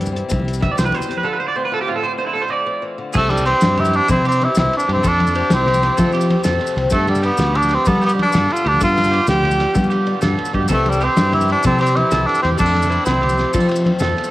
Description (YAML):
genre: highlife guitar band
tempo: 127 BPM (dotted quarters)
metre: 12/8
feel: straight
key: C major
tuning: A4 = 435 Hz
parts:
  - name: picked swing-style acoustic guitar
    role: accompaniment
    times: 0.0-14.3 s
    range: E2 to F4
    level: -25 LUFS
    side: left 4 dB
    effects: none
  - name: fingered electric bass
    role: bass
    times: 0.0-14.1 s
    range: C2 to G3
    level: -19 LUFS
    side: equal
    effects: none
  - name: cloth-damped thuddy drum kit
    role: drums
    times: 0.0-14.2 s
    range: crash cymbal, hi-hat, kick drum, ride cymbal, snare drum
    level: -24 LUFS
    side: equal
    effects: cassette tape
  - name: congas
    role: percussion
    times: 0.1-14.2 s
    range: none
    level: -24 LUFS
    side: left 2 dB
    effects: none
  - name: maracas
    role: percussion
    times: 0.1-14.3 s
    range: none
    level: -34 LUFS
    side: left 5 dB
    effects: none
  - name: electric guitar at the edge of break-up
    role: arpeggios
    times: 0.6-14.3 s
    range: E4 to E5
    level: -23 LUFS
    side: right 5 dB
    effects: lush chorus, tape echo
  - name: breathy tenor saxophone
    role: melody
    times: 3.2-13.6 s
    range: G3 to G4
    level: -18 LUFS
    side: equal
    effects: cassette tape, tape echo
room: light reverb, small room ambience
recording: home recording on cassette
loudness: -14 LUFS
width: side -16 dB against mid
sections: 0.0-3.1 A section; 3.1-14.3 B section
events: clean electric guitar solo 0.0-3.1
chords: 0.0 C; 1.3 Dm7; 3.1 C; 5.0 Fmaj7; 6.9 G7; 10.7 C; 12.6 Fmaj7